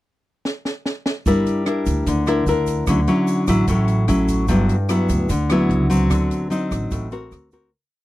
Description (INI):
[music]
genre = bossa nova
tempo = 148 BPM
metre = 4/4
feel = straight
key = unclear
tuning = A4 = 441 Hz
[part]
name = compact cocktail drum kit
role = drums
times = 0.5-7.6 s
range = hi-hat, kick drum, rim click, snare drum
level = -26 LUFS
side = right 1 dB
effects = none
[part]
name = nylon-string guitar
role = accompaniment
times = 1.3-7.7 s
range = G2 to Bb4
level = -18 LUFS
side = left 1 dB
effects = none
[part]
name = upright bass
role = bass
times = 1.3-7.7 s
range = G1 to D2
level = -22 LUFS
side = right 1 dB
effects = none
[part]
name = tube shaker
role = percussion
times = 1.3-7.7 s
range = none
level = -41 LUFS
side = right 26 dB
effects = none
[sound]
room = little or no reverb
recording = dry, close 1970s-style studio recording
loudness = -17 LUFS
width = side -16 dB against mid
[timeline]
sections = 0.0-1.3 pickup bar; 1.3-7.7 A section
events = drum fill 0.4-1.3; fade-out 6.1-7.7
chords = 0.0 N.C.; 1.3 Gm6; 2.9 Dmaj9; 4.5 G6; 6.1 D7b9; 7.3 D7b13